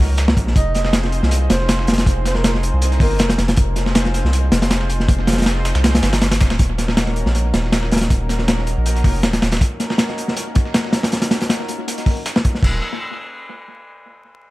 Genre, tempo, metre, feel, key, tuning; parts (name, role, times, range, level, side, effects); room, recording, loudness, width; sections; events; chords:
drum and bass, jungle; 159 BPM; 4/4; straight; Eb dorian; A4 = 441 Hz
lush unison pad; sustained chords; 0.0-12.8 s; Bb3 to C5; -28 LUFS; equal; chorus, vintage 12-bit sampler grit
soft dub sub bass; bass; 0.0-9.6, 12.6-12.8 s; Eb1 to Db2; -18 LUFS; equal
dusty soul sampler-style drum kit; drums; 0.1-12.5 s; hi-hat, snare drum; -29 LUFS; right 1 dB; high-pass filter on hats, high-pass filter on snare, high-pass filter on room, tape echo
crunchy breakbeat drum kit; drums; 0.2-12.7 s; crash cymbal, hi-hat, kick drum, snare drum; -17 LUFS; equal; tape echo
breathy flute-like synth lead; melody; 0.6-3.3 s; Bb4 to Eb5; -26 LUFS; right 1 dB; chorus, vintage 12-bit sampler grit, tape echo
studio reverb; echo-heavy mix, vinyl crackle; -15 LUFS; side -18 dB against mid
0.0-6.6 A section; 6.6-12.6 B section; 12.6-14.1 C section
drop 0.0-6.6
0.0 Ebm7; 0.6 Fm7; 6.6 Ebm7